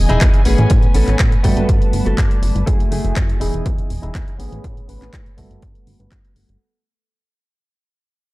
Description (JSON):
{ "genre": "filtered disco house", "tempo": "122 BPM", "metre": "4/4", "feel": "straight", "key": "unclear", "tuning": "A4 = 439 Hz", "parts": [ { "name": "mellow tine electric piano", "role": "accompaniment", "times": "0.0-6.6 s", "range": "E3 to G#5", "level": "-25 LUFS", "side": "equal", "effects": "overdrive, phaser, vintage 12-bit sampler grit, sidechain pumping, low-pass filter" }, { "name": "clear chamber violin section", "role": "sustained chords", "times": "0.0-6.6 s", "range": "A3 to B5", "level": "-30 LUFS", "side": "left 2 dB", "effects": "vintage 12-bit sampler grit, sidechain pumping, low-pass filter" }, { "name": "plucky analog bass", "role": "bass", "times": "0.0-6.6 s", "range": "E1 to A2", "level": "-18 LUFS", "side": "equal", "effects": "tube saturation, sidechain pumping, low-pass filter" }, { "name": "direct-recorded clean electric guitar", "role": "riff", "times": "0.1-6.3 s", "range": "A3 to G5", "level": "-26 LUFS", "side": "left 1 dB", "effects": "spring reverb, sidechain pumping, low-pass filter" }, { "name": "house drum kit", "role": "drums", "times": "0.1-6.6 s", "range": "handclaps, hi-hat", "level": "-27 LUFS", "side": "equal", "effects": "none" }, { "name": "tambourine", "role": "percussion", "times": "0.1-6.6 s", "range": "none", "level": "-38 LUFS", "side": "right 3 dB", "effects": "none" }, { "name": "electronic kick drum", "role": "drums", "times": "0.2-6.2 s", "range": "none", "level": "-16 LUFS", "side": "equal", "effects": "none" } ], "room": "digital ambience", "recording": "dark, warm production", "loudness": "-13 LUFS", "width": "side -20 dB against mid", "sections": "0.0-6.6 A section", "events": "fade-out 0.0-6.6; filter sweep 0.0-6.6; clean electric guitar fill 1.2-2.7", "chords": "0.5 Amaj9; 1.4 Gmaj9; 2.7 F#m9; 3.4 Emaj7; 4.4 Amaj9; 5.4 Gmaj9" }